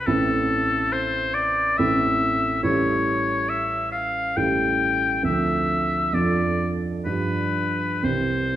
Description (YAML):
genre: classical, romantic duo for oboe and grand piano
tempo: 60-71 BPM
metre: 3/4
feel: rubato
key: unclear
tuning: A4 = 440 Hz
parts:
  - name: clear oboe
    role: melody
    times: 0.0-8.6 s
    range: A4 to G5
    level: -23 LUFS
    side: left 2 dB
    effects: none
  - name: dark grand piano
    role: accompaniment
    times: 0.0-8.6 s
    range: A1 to A4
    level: -23 LUFS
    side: right 2 dB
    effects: none
room: wet recital hall reverb, RT60 1.6 s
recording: minimal, uncompressed stereo recording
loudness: -20 LUFS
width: side -12 dB against mid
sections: 0.0-8.6 A section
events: none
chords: 0.1 Am; 2.6 A7; 5.2 Dm7; 6.1 Dm/F; 7.0 G7; 8.0 C